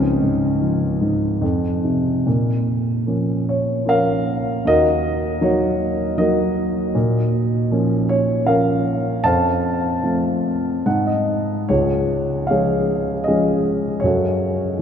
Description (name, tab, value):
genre	classical, lyrical solo piano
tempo	70-81 BPM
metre	3/4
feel	rubato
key	Bb harmonic minor, Db major from 11.7 s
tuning	A4 = 440 Hz
part	dark concert grand piano	solo	0.0-14.8 s	Db2 to A5	-17 LUFS	equal	none
room	wet cathedral reverb, RT60 6.0 s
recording	in a vast, echoing space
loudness	-17 LUFS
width	side -8 dB against mid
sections	0.0-2.3 A section; 2.3-11.7 B section; 11.7-14.8 A section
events	grand piano fill 10.4-11.7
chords	0.0 Db; 1.4 F5; 2.3 Bbm; 4.7 Ebm; 7.0 Bbm; 9.2 F; 10.9 N.C.; 11.7 Db; 14.0 Gbm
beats	0.61 1.43 | 2.27 3.07 3.87 | 4.66 5.43 6.19 | 6.95 7.71 8.46 | 9.24 10.03 10.86 | 11.70 12.50 13.28 | 14.03 14.79